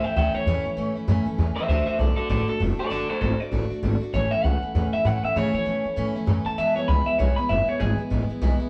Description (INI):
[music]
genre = rockabilly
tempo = 196 BPM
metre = 4/4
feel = swing 60% on 8ths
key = A major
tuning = A4 = 440 Hz
[part]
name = electric guitar through a small old amp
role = melody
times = 0.0-8.0 s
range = G#4 to B5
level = -28 LUFS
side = equal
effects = none
[part]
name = picked steel-string acoustic guitar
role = accompaniment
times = 0.0-8.7 s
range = E2 to F#4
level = -31 LUFS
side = equal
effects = none
[part]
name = upright bass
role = bass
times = 0.0-8.6 s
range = F1 to C#3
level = -26 LUFS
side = equal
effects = none
[sound]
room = moderate stone room reverb, RT60 1.3 s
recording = band playing live in one room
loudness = -24 LUFS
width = mono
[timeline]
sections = 0.0-8.7 A section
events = clean electric guitar solo 0.0-8.7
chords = 0.0 A; 1.7 D; 4.1 A; 6.6 E